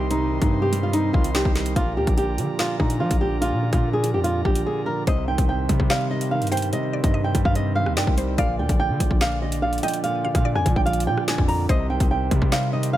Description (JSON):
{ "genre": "hip hop, drill", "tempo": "145 BPM", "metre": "4/4", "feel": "half-time", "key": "C minor", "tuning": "A4 = 440 Hz", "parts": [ { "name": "flamenco guitar", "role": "melody", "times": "0.0-13.0 s", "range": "Eb4 to Bb5", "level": "-25 LUFS", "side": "equal", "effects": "ping-pong delay" }, { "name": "dark concert grand piano", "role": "accompaniment", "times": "0.0-13.0 s", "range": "Bb2 to G3", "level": "-28 LUFS", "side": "right 6 dB", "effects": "none" }, { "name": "pipe organ, principal", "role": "sustained chords", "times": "0.0-13.0 s", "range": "D3 to C6", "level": "-34 LUFS", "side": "left 3 dB", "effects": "none" }, { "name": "hard-hitting 808-style bass", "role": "bass", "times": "0.0-13.0 s", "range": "Bb1 to F3", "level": "-25 LUFS", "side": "left 1 dB", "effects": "none" }, { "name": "drill drum kit", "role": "drums", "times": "0.1-12.9 s", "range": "hi-hat, kick drum, rim click, snare drum", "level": "-23 LUFS", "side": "left 1 dB", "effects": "none" }, { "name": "mallet-like synth pluck", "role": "second line", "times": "5.1-13.0 s", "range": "C5 to F5", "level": "-34 LUFS", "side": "left 6 dB", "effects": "chorus, ping-pong delay" } ], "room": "small room ambience", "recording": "none", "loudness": "-19 LUFS", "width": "side -13 dB against mid", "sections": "0.0-5.1 A section; 5.1-13.0 B section", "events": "break 4.7-5.1", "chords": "0.0 Cm; 1.8 Bb; 5.1 Cm; 8.4 Bb; 11.7 Cm" }